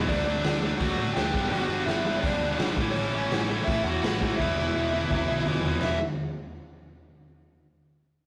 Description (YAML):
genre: punk rock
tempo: 167 BPM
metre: 4/4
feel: straight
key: unclear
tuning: A4 = 442 Hz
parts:
  - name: distorted electric guitar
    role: riff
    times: 0.0-6.0 s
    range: G2 to E4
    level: -33 LUFS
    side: equal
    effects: overdrive
  - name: overdriven electric guitar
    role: riff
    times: 0.0-6.0 s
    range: E2 to D4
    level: -35 LUFS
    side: equal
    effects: none
  - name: hollow-body short-scale picked electric bass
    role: bass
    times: 0.0-6.0 s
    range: E1 to A2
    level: -36 LUFS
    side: equal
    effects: none
  - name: high-gain lead guitar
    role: melody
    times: 0.1-6.0 s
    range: C#4 to G5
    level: -32 LUFS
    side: equal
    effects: distortion
  - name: raw garage drum kit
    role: drums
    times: 0.1-5.9 s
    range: crash cymbal, hi-hat, kick drum, snare drum, toms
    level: -32 LUFS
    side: equal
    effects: none
room: light reverb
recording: rough rehearsal-room recording, warm saturation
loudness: -27 LUFS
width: mono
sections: 0.1-5.8 A section; 5.8-7.3 B section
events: drum fill 4.4-5.8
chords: 0.1 D; 1.3 G; 2.8 A; 4.4 E; 5.8 E5